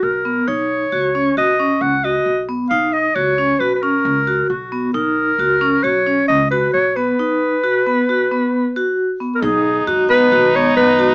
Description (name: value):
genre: contemporary instrumental, chamber music in an uneven meter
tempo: 134 BPM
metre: 5/4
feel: straight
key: B major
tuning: A4 = 442 Hz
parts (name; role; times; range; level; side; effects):
- clear clarinet; melody; 0.0-11.1 s; F#4 to F#5; -16 LUFS; equal; none
- vibraphone with medium hard mallets; arpeggios; 0.0-11.1 s; B3 to F#4; -17 LUFS; equal; none
- upright bass; bass; 0.0-11.1 s; B1 to F#2; -29 LUFS; equal; none
- rich viola; second line; 9.4-11.1 s; D#4; -19 LUFS; equal; none
- deep dark ambient pad; sustained chords; 10.0-11.1 s; D#3 to B3; -28 LUFS; equal; chorus, built-in reverb
room: light reverb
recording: small speaker sound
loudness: -14 LUFS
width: side -30 dB against mid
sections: 0.0-9.4 A section; 9.4-11.1 B section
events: none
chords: 0.5 F#6/B; 7.2 B; 9.4 B6